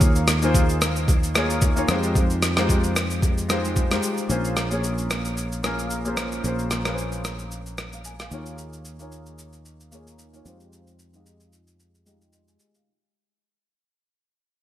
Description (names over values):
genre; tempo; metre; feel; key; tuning
amapiano; 112 BPM; 4/4; swing 55% on 16ths; unclear; A4 = 440 Hz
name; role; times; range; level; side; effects
warm grand piano; accompaniment; 0.0-13.0 s; Ab3 to C6; -27 LUFS; left 1 dB; analog chorus, low-pass filter
fingered electric bass; bass; 0.0-12.6 s; Bb1 to F2; -27 LUFS; equal; none
boom bap sampler-style drum kit; drums; 0.0-12.9 s; kick drum, rim click, shaker; -23 LUFS; equal; overdrive, gated reverb
room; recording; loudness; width
light reverb; bright 1980s-style digital production; -20 LUFS; side -12 dB against mid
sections
0.0-12.9 A section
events
fade-out 0.0-12.9; filter sweep on grand piano 0.0-12.9; break 11.8-12.9; grand piano fill 11.8-12.9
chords
0.0 Eb9sus4; 1.9 Fm9; 4.3 Bbm9; 8.3 Eb9sus4; 10.5 Fm9